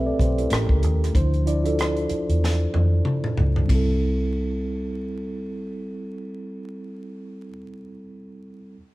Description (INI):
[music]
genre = R&B, neo-soul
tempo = 94 BPM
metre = 4/4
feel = swing 58% on 16ths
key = C major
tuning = A4 = 440 Hz
[part]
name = mellow tine electric piano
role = accompaniment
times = 0.0-8.8 s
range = F3 to E5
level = -27 LUFS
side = right 1 dB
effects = medium stereo tremolo
[part]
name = vintage muted fingered electric bass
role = bass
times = 0.0-7.5 s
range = A1 to F2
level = -22 LUFS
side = equal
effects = none
[part]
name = tight funk drum kit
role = drums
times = 0.2-3.9 s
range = hi-hat, kick drum, ride cymbal, rim click, snare drum, toms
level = -24 LUFS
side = equal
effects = none
[sound]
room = moderate large studio reverb, RT60 1.5 s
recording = band playing live in one room, vinyl crackle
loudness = -20 LUFS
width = side -18 dB against mid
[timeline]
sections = 0.0-3.7 A section; 3.7-6.2 B section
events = drum fill 2.4-3.7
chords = 0.0 Am9; 0.5 A7b9; 1.1 Dm9; 3.7 C6